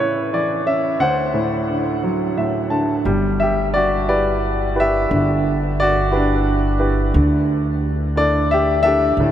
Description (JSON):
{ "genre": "acoustic folk-pop ballad", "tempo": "59 BPM (dotted quarters)", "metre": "6/8", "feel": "straight", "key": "G major", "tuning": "A4 = 441 Hz", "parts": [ { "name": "warm baby grand piano", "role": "melody", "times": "0.0-9.3 s", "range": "D2 to A5", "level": "-17 LUFS", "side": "equal", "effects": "none" }, { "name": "upright bass", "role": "bass", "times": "3.1-9.3 s", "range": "G1 to D2", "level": "-21 LUFS", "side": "equal", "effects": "none" } ], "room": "wet huge ambient reverb, RT60 7.1 s", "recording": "in a vast, echoing space", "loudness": "-16 LUFS", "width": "side -10 dB against mid", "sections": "0.0-3.1 A section; 3.1-9.3 B section", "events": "grand piano fill 2.0-3.1", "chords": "0.0 A; 1.0 D7; 3.1 G6; 7.2 Dsus2" }